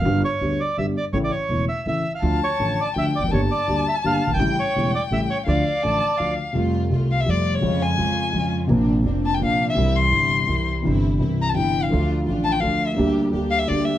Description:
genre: tango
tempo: 168 BPM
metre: 3/4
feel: rubato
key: D harmonic minor, F major from 6.6 s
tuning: A4 = 441 Hz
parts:
  - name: bandoneon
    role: melody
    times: 0.0-6.3 s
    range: C#5 to G5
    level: -24 LUFS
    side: right 2 dB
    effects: none
  - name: dark concert grand piano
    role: accompaniment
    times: 0.0-14.0 s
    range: E1 to G4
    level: -22 LUFS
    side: left 1 dB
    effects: none
  - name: upright bass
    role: bass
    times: 0.0-14.0 s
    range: E1 to F2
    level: -26 LUFS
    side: right 2 dB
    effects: none
  - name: warm violin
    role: second line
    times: 2.2-14.0 s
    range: Db5 to C6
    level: -24 LUFS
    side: left 5 dB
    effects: none
  - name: warm symphonic string section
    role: stabs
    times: 6.5-14.0 s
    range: G3 to G4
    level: -30 LUFS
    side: right 3 dB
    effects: none
room: moderate large studio reverb, RT60 0.9 s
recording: none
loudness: -19 LUFS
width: side -12 dB against mid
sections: 0.0-6.6 A section; 6.6-14.0 B section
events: violin solo 6.6-14.0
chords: 0.1 G; 1.1 A; 2.2 Dm; 3.3 Gm; 4.4 A7; 5.5 Dm; 6.6 Fadd9; 7.6 Db/F; 8.7 Bbadd9; 9.8 C; 11.9 Dm; 13.0 Gm/D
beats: | 0.06 0.41 0.77 | 1.14 1.50 1.86 | 2.23 2.60 2.96 | 3.32 3.68 4.04 | 4.39 4.75 5.11 | 5.46 5.82 6.19 | 6.55 6.91 7.27 | 7.63 7.99 8.34 | 8.69 9.05 9.40 | 9.76 10.12 10.48 | 10.84 11.20 11.56 | 11.91 12.27 12.62 | 12.97 13.32 13.68

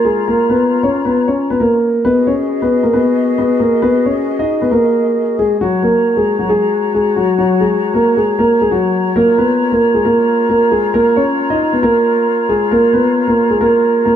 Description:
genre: hip hop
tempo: 135 BPM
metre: 4/4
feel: half-time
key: Bb phrygian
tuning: A4 = 440 Hz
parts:
  - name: dark concert grand piano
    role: melody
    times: 0.0-14.2 s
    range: Gb3 to D#5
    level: -12 LUFS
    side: equal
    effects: low-pass filter
  - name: mellow hollow flute section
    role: sustained chords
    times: 0.0-14.2 s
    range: F4 to Bb5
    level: -19 LUFS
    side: left 4 dB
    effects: none
room: moderate scoring stage reverb, RT60 1.7 s, small room ambience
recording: dark, warm production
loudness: -11 LUFS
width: side -9 dB against mid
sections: 0.0-2.0 A section; 2.0-14.2 A section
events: none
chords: 0.0 Bbm; 2.0 B6; 5.6 Gb; 9.2 Bbm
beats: | 0.27 0.72 1.16 1.60 | 2.05 2.49 2.94 3.38 | 3.83 4.27 4.72 5.16 | 5.61 6.05 6.49 6.94 | 7.38 7.83 8.27 8.72 | 9.16 9.61 10.05 10.49 | 10.94 11.38 11.83 12.27 | 12.72 13.16 13.61 14.05

